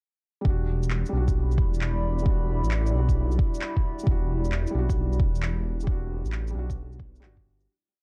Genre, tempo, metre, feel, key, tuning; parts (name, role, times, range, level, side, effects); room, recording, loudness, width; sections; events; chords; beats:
future garage; 133 BPM; 4/4; swing 67% on 16ths; E minor; A4 = 440 Hz
felt-muted upright piano; accompaniment; 0.4-7.7 s; G3 to F#4; -38 LUFS; equal; sidechain pumping, tape echo
warbly tape-like pad; sustained chords; 1.2-7.6 s; E4 to B5; -38 LUFS; equal; chorus, built-in reverb, sidechain pumping
swelling detuned saw bass; bass; 0.4-7.7 s; E1 to B1; -28 LUFS; equal; sidechain pumping
electronic kick drum; drums; 0.5-7.4 s; -27 LUFS; equal; overdrive
electronic shaker and handclaps; drums; 0.8-7.7 s; -39 LUFS; equal
little or no reverb; dry, gritty hardware recording, cassette tape; -26 LUFS; mono
0.5-7.7 groove
fade-out 5.3-7.7
0.5 Em7
| 0.46 0.91 1.36 1.81 | 2.27 2.72 3.17 3.62 | 4.07 4.52 4.97 5.42 | 5.88 6.33 6.78 7.23